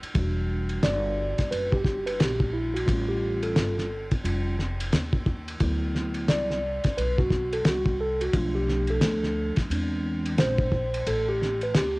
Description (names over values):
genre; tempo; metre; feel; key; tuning
hip hop, jazz-hop; 88 BPM; 4/4; swing 62% on 16ths; E minor; A4 = 440 Hz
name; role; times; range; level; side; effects
upright bass; bass; 0.0-12.0 s; E1 to E2; -30 LUFS; equal; none
cloth-damped thuddy drum kit; drums; 0.0-11.9 s; hi-hat, kick drum, ride cymbal, snare drum; -27 LUFS; equal; cassette tape
mellow tine electric piano; accompaniment; 0.1-12.0 s; F3 to D5; -28 LUFS; equal; medium stereo tremolo, cassette tape
room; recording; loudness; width
light reverb; home recording on cassette; -23 LUFS; side -24 dB against mid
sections
0.2-12.0 A section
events
tine electric piano solo 0.2-12.0; kick muted 11.1-12.0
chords
0.2 Em9; 2.9 Aaug7; 5.6 D6; 8.3 Bm7b5; 9.7 E7b13; 11.1 A7sus2